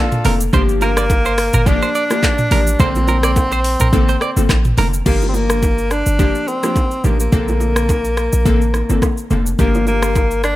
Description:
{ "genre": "afrobeats", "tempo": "106 BPM", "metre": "4/4", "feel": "swing 55% on 16ths", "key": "unclear", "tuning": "A4 = 440 Hz", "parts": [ { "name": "breathy tenor saxophone", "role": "melody", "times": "0.0-10.6 s", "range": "Bb3 to D4", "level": "-20 LUFS", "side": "equal", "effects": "none" }, { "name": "afro-pop drum kit", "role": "drums", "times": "0.1-10.6 s", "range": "crash cymbal, handclaps, hi-hat, kick drum, rim click, shaker, toms", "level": "-18 LUFS", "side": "equal", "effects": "none" }, { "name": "glassy digital keys", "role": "accompaniment", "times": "0.2-10.1 s", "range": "D3 to A4", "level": "-22 LUFS", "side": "left 3 dB", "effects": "chorus" }, { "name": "warm 808-style bass", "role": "bass", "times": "0.2-10.6 s", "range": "F1 to Bb1", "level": "-18 LUFS", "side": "equal", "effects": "none" }, { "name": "direct-recorded clean electric guitar", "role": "riff", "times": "0.3-4.9 s", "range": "Bb4 to D5", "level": "-23 LUFS", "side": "right 5 dB", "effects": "none" }, { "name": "congas and bongos", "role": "percussion", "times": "0.3-10.3 s", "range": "none", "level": "-27 LUFS", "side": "right 4 dB", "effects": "none" } ], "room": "digital ambience", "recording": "none", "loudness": "-13 LUFS", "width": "side -16 dB against mid", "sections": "0.0-5.1 A section; 5.1-10.6 B section", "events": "none", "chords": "0.0 Bbmaj9; 0.5 Gm7; 2.8 Bbmaj9; 5.1 Gm7; 7.3 Bbmaj9; 9.6 Gm7", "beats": "| 0.53 1.10 1.66 2.23 | 2.80 3.36 3.93 4.50 | 5.06 5.63 6.19 6.76 | 7.33 7.89 8.46 9.02 | 9.59 10.15" }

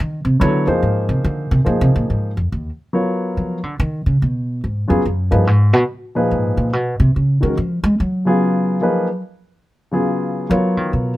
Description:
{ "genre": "modal jazz", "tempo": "143 BPM", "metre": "3/4", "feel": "swing 66% on 8ths", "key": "Db mixolydian", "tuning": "A4 = 438 Hz", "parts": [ { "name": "upright bass", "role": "bass", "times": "0.0-11.2 s", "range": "Eb2 to Ab3", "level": "-17 LUFS", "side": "equal", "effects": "none" }, { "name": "warm grand piano", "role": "accompaniment", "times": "0.4-11.1 s", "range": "Bb2 to Db5", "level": "-18 LUFS", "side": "left 1 dB", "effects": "none" } ], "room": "light reverb", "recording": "close, detailed microphones", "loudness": "-15 LUFS", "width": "side -16 dB against mid", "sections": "0.0-2.9 A section; 2.9-11.2 A section", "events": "upright bass solo 0.0-11.2", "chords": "0.0 Bb9sus4; 2.9 Db9sus4", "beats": "| 0.41 0.83 1.25 | 1.67 2.09 2.51 | 2.93 3.35 3.77 | 4.19 4.61 5.03 | 5.45 5.87 6.29 | 6.71 7.13 7.55 | 7.97 8.39 8.81 | 9.23 9.65 10.07 | 10.49 10.91" }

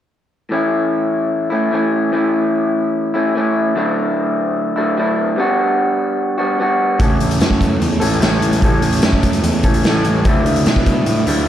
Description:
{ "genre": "indie rock", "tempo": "148 BPM", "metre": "4/4", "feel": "straight", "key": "A major", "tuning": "A4 = 440 Hz", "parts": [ { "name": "electric guitar through a small old amp", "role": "riff", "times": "0.5-11.5 s", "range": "A2 to A4", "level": "-16 LUFS", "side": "equal", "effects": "spring reverb" }, { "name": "fuzz picked electric bass", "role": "bass", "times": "7.0-11.4 s", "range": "A1 to B2", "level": "-19 LUFS", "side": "equal", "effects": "overdrive" }, { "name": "raw garage drum kit", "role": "drums", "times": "7.0-11.4 s", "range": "hi-hat, kick drum, snare drum", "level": "-16 LUFS", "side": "equal", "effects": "none" } ], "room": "light reverb", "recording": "dark, warm production", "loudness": "-14 LUFS", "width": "side -11 dB against mid", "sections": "0.5-11.5 A section", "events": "none", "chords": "0.5 A; 3.8 Dadd9; 5.4 Gmaj7; 7.0 A; 10.3 Dadd9", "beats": "| 0.50 0.91 1.31 1.72 | 2.13 2.53 2.94 3.35 | 3.75 4.16 4.57 4.97 | 5.38 5.79 6.19 6.60 | 7.01 7.41 7.82 8.22 | 8.63 9.04 9.45 9.85 | 10.26 10.66 11.07 11.48" }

